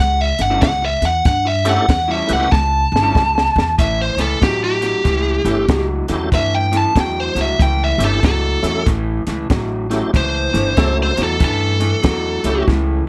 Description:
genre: electric blues shuffle.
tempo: 94 BPM.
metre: 4/4.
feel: swing 63% on 8ths.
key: A mixolydian.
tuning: A4 = 439 Hz.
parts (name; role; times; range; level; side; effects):
biting lead guitar; melody; 0.0-12.7 s; G4 to A5; -20 LUFS; equal; overdrive.
electric guitar through a small old amp; riff; 0.0-13.0 s; A2 to E4; -26 LUFS; equal; spring reverb.
upright bass; bass; 0.0-13.0 s; G1 to G2; -22 LUFS; equal; none.
compact cocktail drum kit; drums; 0.0-12.9 s; hi-hat, kick drum, snare drum; -20 LUFS; equal; none.
tonewheel organ; accompaniment; 1.6-12.7 s; A3 to B4; -24 LUFS; equal; slow rotary speaker, overdrive, chorus vibrato.
room: light reverb.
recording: none.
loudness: -17 LUFS.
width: mono.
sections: 0.0-3.8 A section; 3.8-13.1 B section.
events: lead electric guitar solo 0.0-3.8; drum fill 2.5-3.8, 12.7-13.1.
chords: 0.0 A7.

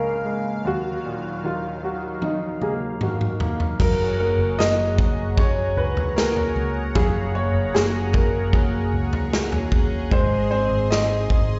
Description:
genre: pop ballad.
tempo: 76 BPM.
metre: 4/4.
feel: straight.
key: F# major.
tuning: A4 = 440 Hz.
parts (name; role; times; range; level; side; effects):
warm baby grand piano; melody; 0.0-11.6 s; D#4 to D#5; -27 LUFS; equal; plate reverb, slapback echo, digital delay.
clear concert grand piano; accompaniment; 0.0-11.6 s; C#2 to C#5; -32 LUFS; equal; plate reverb, slapback echo.
warm analog pad; sustained chords; 0.0-11.6 s; C#2 to B#5; -34 LUFS; equal; chorus, plate reverb.
natural country drum kit; drums; 2.2-11.5 s; crash cymbal, kick drum, snare drum, toms; -25 LUFS; equal; none.
picked steel-string acoustic guitar; arpeggios; 3.8-11.6 s; G#2 to G#4; -32 LUFS; equal; plate reverb, slapback echo.
vintage muted fingered electric bass; bass; 3.8-11.6 s; F#1 to D#2; -27 LUFS; equal; none.
room: light reverb.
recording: live gig heard through the venue's PA, recital hall reverb, nothing above 7.8 kHz.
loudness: -22 LUFS.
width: mono.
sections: 0.0-3.8 A section; 3.8-11.6 B section.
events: drum fill 2.2-3.8.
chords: 0.0 C#6; 0.6 D#madd9; 3.8 F#add9; 10.1 G#.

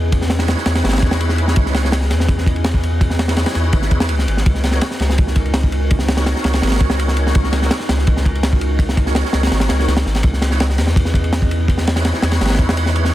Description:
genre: drum and bass, jungle.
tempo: 166 BPM.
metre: 4/4.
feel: straight.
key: C# dorian.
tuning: A4 = 440 Hz.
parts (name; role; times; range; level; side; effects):
warbly tape-like pad; sustained chords; 0.0-13.1 s; C#4 to D#5; -27 LUFS; equal; chorus, built-in reverb.
saturated sub bass; bass; 0.0-13.1 s; G#1 to E2; -17 LUFS; equal; none.
crunchy breakbeat drum kit; drums; 0.1-13.1 s; kick drum, ride cymbal, snare drum; -17 LUFS; equal; none.
tonewheel organ; stabs; 0.4-13.1 s; D#4 to C#5; -26 LUFS; right 2 dB; chorus vibrato, slow rotary speaker, dub echo.
room: small room ambience.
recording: dense, heavily limited modern master.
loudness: -14 LUFS.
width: side -14 dB against mid.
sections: 0.0-13.1 A section.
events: none.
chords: 0.0 C#m9; 4.5 D#m7; 10.2 C#m9.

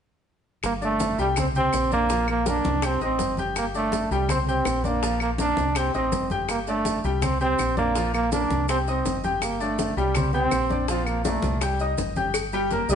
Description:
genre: latin, salsa.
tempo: 164 BPM.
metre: 4/4.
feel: straight.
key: unclear.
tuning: A4 = 440 Hz.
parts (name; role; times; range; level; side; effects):
fingered electric bass; bass; 0.6-12.9 s; G1 to C2; -29 LUFS; equal; none.
bongos and cowbell; percussion; 0.6-12.9 s; none; -34 LUFS; left 5 dB; none.
claves; percussion; 0.6-12.5 s; none; -36 LUFS; left 2 dB; none.
congas; percussion; 0.6-12.9 s; none; -32 LUFS; left 2 dB; none.
maracas; percussion; 0.6-12.9 s; none; -37 LUFS; right 5 dB; none.
bright trombone; melody; 0.7-12.0 s; G3 to D4; -25 LUFS; right 2 dB; none.
bright upright piano; accompaniment; 0.8-12.9 s; Bb2 to G6; -28 LUFS; left 3 dB; none.
clear trombone section; melody; 12.9 s; C3 to G3; -19 LUFS; equal; none.
room: wet stone room reverb, RT60 1.1 s.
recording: band playing live in one room, nothing above 11.0 kHz.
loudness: -22 LUFS.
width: side -8 dB against mid.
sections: 0.6-12.3 A section.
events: none.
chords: 0.6 G5; 1.4 C5; 2.1 Bb; 2.8 Cm; 3.6 G5; 4.3 C5; 5.0 Bb; 5.8 Cm; 6.5 G5; 7.2 C5; 8.0 Bb; 8.7 Cm; 9.4 G5; 10.2 C5; 10.9 Bb; 11.6 Cm; 12.3 Gm.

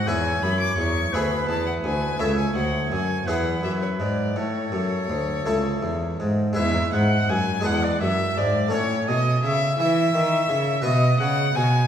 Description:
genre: classical, baroque-style sonata movement with continuo.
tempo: 56 BPM (dotted quarters).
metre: 6/8.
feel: straight.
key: A major, E major from 6.6 s.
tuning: A4 = 443 Hz.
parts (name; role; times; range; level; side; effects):
rich violin; melody; 0.0-11.9 s; C#5 to D6; -28 LUFS; left 5 dB; none.
clear oboe; second line; 0.0-11.9 s; A4 to G#5; -27 LUFS; right 1 dB; none.
harpsichord; accompaniment; 0.0-11.9 s; C#2 to C#5; -26 LUFS; left 1 dB; none.
rich cello; bass; 0.0-11.9 s; C#2 to E3; -24 LUFS; right 1 dB; none.
room: wet recital hall reverb, RT60 1.6 s.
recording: heard from further back in the room.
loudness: -20 LUFS.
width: side -9 dB against mid.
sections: 0.0-6.6 A section; 6.6-11.9 A section.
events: none.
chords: 0.1 E5; 1.1 E7/D; 2.2 A/C#; 3.3 E; 4.4 A; 6.6 E; 7.7 E7; 8.7 A; 10.9 B5.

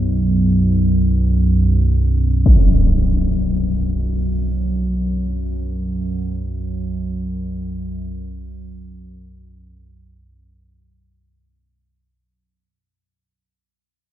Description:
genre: dark ambient drone.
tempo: free time.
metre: none.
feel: none.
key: unclear.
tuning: A4 = 439 Hz.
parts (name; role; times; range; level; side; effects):
analog drone; drone; 0.0-12.4 s; B1 to F#2; -18 LUFS; equal; chorus.
impact; percussion; 2.5-2.7 s; none; -17 LUFS; equal; low-pass filter on sfx.
room: wet huge ambient reverb, RT60 9.1 s.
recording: dark, warm production.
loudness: -16 LUFS.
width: side -12 dB against mid.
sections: 0.0-12.3 A section.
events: filter sweep on synth drone 0.0-12.3; fade-out 1.8-12.3.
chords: 0.0 B5.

